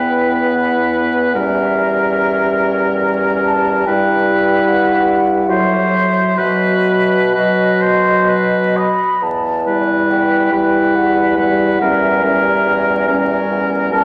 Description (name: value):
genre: classical, slow romantic movement for wind quintet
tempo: 62-75 BPM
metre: 3/4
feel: rubato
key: E minor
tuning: A4 = 440 Hz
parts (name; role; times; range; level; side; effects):
- mellow concert flute; melody; 0.0-14.0 s; D#5 to B5; -22 LUFS; equal; none
- warm oboe; second line; 0.0-14.0 s; Bb4 to D#5; -20 LUFS; equal; none
- mellow French horn; accompaniment; 0.0-14.0 s; F#3 to B3; -21 LUFS; equal; none
- warm clarinet; accompaniment; 0.0-14.0 s; C#4 to F#4; -23 LUFS; equal; none
- mellow bassoon; bass; 0.0-14.0 s; E2 to B2; -24 LUFS; equal; none
room: wet scoring stage reverb, RT60 1.8 s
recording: vinyl crackle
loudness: -15 LUFS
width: mono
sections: 0.0-14.0 A section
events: none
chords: 0.0 Em; 1.4 Edim7; 3.9 Em/G; 5.5 F#m7b5/A; 6.4 B; 9.2 Em; 11.8 Edim7